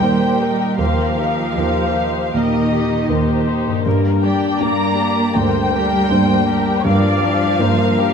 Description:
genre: cinematic, emotional film score for orchestra.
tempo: 80 BPM.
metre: 4/4.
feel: rubato.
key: Eb major.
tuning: A4 = 439 Hz.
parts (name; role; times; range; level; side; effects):
muted symphonic violin section; melody; 0.0-8.1 s; Eb5 to Bb5; -21 LUFS; left 2 dB; none.
muted studio violin section; second line; 0.0-8.1 s; Bb3 to Bb4; -24 LUFS; left 3 dB; none.
muted symphonic viola section; accompaniment; 0.0-8.1 s; G4 to D5; -25 LUFS; right 1 dB; none.
warm grand piano; accompaniment; 0.0-8.1 s; D2 to Bb4; -20 LUFS; left 1 dB; none.
concert harp; arpeggios; 0.0-7.7 s; G2 to Bb4; -26 LUFS; left 8 dB; none.
muted symphonic cello section; bass; 0.0-8.1 s; Eb3 to Bb3; -22 LUFS; right 3 dB; none.
muted symphonic double bass section; bass; 0.0-8.1 s; Eb2 to G2; -22 LUFS; right 3 dB; none.
room: wet concert hall reverb, RT60 1.9 s.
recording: none.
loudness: -14 LUFS.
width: side -6 dB against mid.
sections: 0.0-8.1 A section.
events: none.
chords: 0.0 Eb; 3.9 Gm.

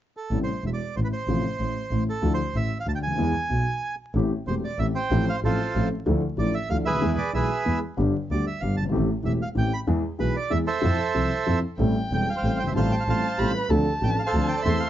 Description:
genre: tango.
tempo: 189 BPM.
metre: 3/4.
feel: rubato.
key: A minor.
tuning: A4 = 439 Hz.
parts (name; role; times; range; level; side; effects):
bandoneon; melody; 0.2-14.9 s; F4 to B5; -28 LUFS; right 4 dB; plate reverb.
dark baby grand piano; accompaniment; 0.3-14.8 s; E1 to A4; -26 LUFS; left 2 dB; none.
clear double bass; bass; 0.3-14.8 s; E1 to F2; -27 LUFS; right 1 dB; none.
warm violin; second line; 11.8-14.9 s; G5 to C6; -30 LUFS; equal; none.
breathy bright concert flute; second line; 13.4-13.9 s; G4 to B4; -32 LUFS; right 5 dB; tape echo.
room: light reverb.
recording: dark, warm production, vinyl crackle, nothing above 7.5 kHz.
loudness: -22 LUFS.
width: side -12 dB against mid.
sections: 0.3-4.2 A section; 4.2-14.9 B section.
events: stop 3.8-4.2.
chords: 0.3 Am7; 1.3 F/A; 2.2 Dmadd9; 3.2 E; 4.2 Am7; 5.1 F/A; 6.1 Dmadd9; 7.0 E; 8.0 G; 8.9 Am7; 9.9 E; 10.8 Fmaj7; 11.8 Am7; 12.8 Fadd9/A; 13.7 Dm7.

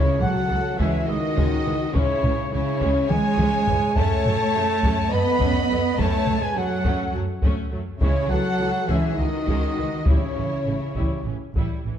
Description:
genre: cinematic, epic orchestral film score.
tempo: 207 BPM (eighths).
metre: 7/8.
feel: straight.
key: F# dorian.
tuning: A4 = 440 Hz.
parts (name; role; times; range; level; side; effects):
dark symphonic violin section; melody; 0.0-11.3 s; C#5 to B5; -31 LUFS; left 2 dB; none.
rich symphonic violin section; second line; 0.0-11.3 s; E4 to D#5; -32 LUFS; left 5 dB; none.
clear symphonic viola section; accompaniment; 0.0-11.9 s; C#3 to E4; -33 LUFS; equal; none.
bright trombone section; sustained chords; 0.0-11.2 s; C#3 to B3; -30 LUFS; right 4 dB; none.
dark French horn section; sustained chords; 0.0-11.2 s; C#4 to B4; -30 LUFS; left 4 dB; none.
dark trumpet section; stabs; 0.0-11.2 s; C#5 to B5; -28 LUFS; equal; none.
rich symphonic cello section; bass; 0.0-11.3 s; C#3 to B3; -28 LUFS; right 2 dB; none.
timpani; percussion; 0.0-0.7 s; C#3; -31 LUFS; left 2 dB; none.
rich symphonic double bass section; bass; 0.2-11.9 s; A1 to F#2; -28 LUFS; right 2 dB; none.
taiko ensemble; drums; 0.2-12.0 s; none; -24 LUFS; equal; none.
room: moderate scoring stage reverb, RT60 1.8 s.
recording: dark, warm production.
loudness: -20 LUFS.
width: side -9 dB against mid.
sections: 0.0-12.0 A section.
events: drum fill 3.1-4.0.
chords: 0.0 C#m; 4.0 F#m; 8.0 C#m; 10.1 A7.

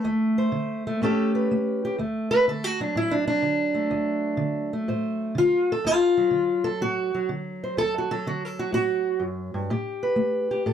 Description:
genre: acoustic country blues, solo or duo.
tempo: 124 BPM.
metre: 4/4.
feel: swing 68% on 8ths.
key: D mixolydian.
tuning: A4 = 440 Hz.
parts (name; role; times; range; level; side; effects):
fingerpicked steel-string acoustic guitar; solo; 0.0-10.7 s; D2 to C5; -22 LUFS; equal; none.
room: light reverb.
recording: dark, warm production.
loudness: -22 LUFS.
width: side -8 dB against mid.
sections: 0.0-2.0 A section; 2.0-10.7 A section.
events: steel-string acoustic guitar solo 0.0-10.7.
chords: 0.0 D5; 1.0 A7; 2.0 D7; 9.7 A7(no3).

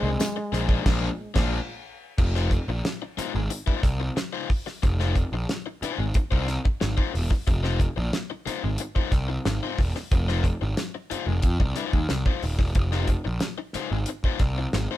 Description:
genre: funk.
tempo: 91 BPM.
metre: 4/4.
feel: straight.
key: F dorian.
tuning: A4 = 440 Hz.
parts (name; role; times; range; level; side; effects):
warm trombone; melody; 0.0-1.8 s; Ab3; -32 LUFS; right 1 dB; none.
overdriven electric guitar; accompaniment; 0.0-15.0 s; Ab3 to C5; -32 LUFS; left 8 dB; none.
fuzz picked electric bass; bass; 0.0-14.9 s; Eb1 to F2; -26 LUFS; equal; overdrive.
damped 70s drum kit; drums; 0.2-14.9 s; crash cymbal, hi-hat, kick drum, snare drum; -25 LUFS; equal; none.
tambourine; percussion; 0.2-0.7 s; none; -39 LUFS; left 4 dB; none.
room: little or no reverb.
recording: band playing live in one room.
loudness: -23 LUFS.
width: side -14 dB against mid.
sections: 0.0-2.2 A section; 2.2-15.0 B section.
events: band accent 0.9-2.2.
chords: 0.0 Bb9; 2.2 Fm7.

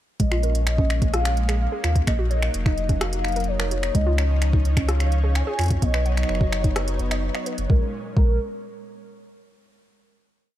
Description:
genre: IDM.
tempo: 128 BPM.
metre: 4/4.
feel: straight.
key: Bb phrygian.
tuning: A4 = 440 Hz.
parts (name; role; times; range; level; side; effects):
warbly nostalgic lead; melody; 0.2-8.4 s; Bb4 to Ab5; -30 LUFS; equal; analog chorus, tape echo.
warm analog pad; sustained chords; 0.2-7.9 s; Bb2 to Eb4; -33 LUFS; left 1 dB; chorus.
warbly dusty pluck; arpeggios; 0.2-8.4 s; Ab3 to F#5; -32 LUFS; right 2 dB; chorus, ping-pong delay.
warm sub bass; bass; 0.2-8.4 s; F1 to F2; -22 LUFS; equal; none.
electronic kick drum; drums; 0.2-8.3 s; none; -20 LUFS; equal; none.
organic electronic drum kit; drums; 0.2-7.7 s; finger snaps, hi-hat, rim click; -30 LUFS; equal; none.
flickering grainy texture; texture; 4.3-7.7 s; Db5; -36 LUFS; right 3 dB; built-in reverb, sidechain pumping.
room: digital ambience.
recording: none.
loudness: -20 LUFS.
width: side -13 dB against mid.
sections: 0.2-7.7 groove; 7.7-9.6 final chord.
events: none.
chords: 0.2 Bbm7; 2.1 Gb6; 3.9 Dbadd9; 5.8 B; 7.7 Bbm7.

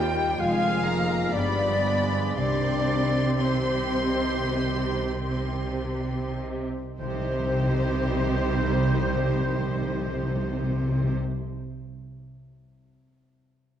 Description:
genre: classical, slow romantic movement for symphony orchestra.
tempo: 47-71 BPM.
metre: 4/4.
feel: rubato.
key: C minor.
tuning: A4 = 440 Hz.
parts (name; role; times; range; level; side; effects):
warm studio violin section; melody; 0.0-11.2 s; C5 to C6; -36 LUFS; left 2 dB; none.
clear clarinet; second line; 0.0-11.2 s; C5 to G5; -36 LUFS; left 2 dB; none.
mellow hollow wooden flute; second line; 0.0-11.1 s; C5 to G5; -33 LUFS; left 1 dB; none.
warm oboe; second line; 0.0-11.2 s; C5 to G5; -37 LUFS; right 1 dB; none.
warm studio violin section; second line; 0.0-11.2 s; C5 to G5; -37 LUFS; left 3 dB; none.
rich studio viola section; accompaniment; 0.0-11.2 s; Ab3 to G4; -33 LUFS; right 1 dB; none.
bright trombone section; sustained chords; 0.0-11.2 s; Eb3 to Ab3; -37 LUFS; right 3 dB; none.
warm French horn section; sustained chords; 0.0-11.1 s; C4 to G4; -35 LUFS; left 5 dB; none.
concert harp; arpeggios; 0.0-11.5 s; F2 to C6; -36 LUFS; left 5 dB; none.
warm studio cello section; bass; 0.0-11.2 s; Eb2 to C3; -30 LUFS; right 2 dB; none.
warm studio double bass section; bass; 0.0-11.2 s; F1 to Eb2; -32 LUFS; right 3 dB; none.
timpani; percussion; 7.0-11.2 s; C3; -29 LUFS; left 1 dB; none.
room: wet scoring stage reverb, RT60 1.8 s.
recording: worn, warbling old tape, cassette tape, warbly pitch drift.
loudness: -23 LUFS.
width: side -9 dB against mid.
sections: 0.0-7.0 A section; 7.0-11.8 B section.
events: slowing down 0.0-7.0.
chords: 0.4 Fm7; 1.3 G7b9; 2.4 Cm.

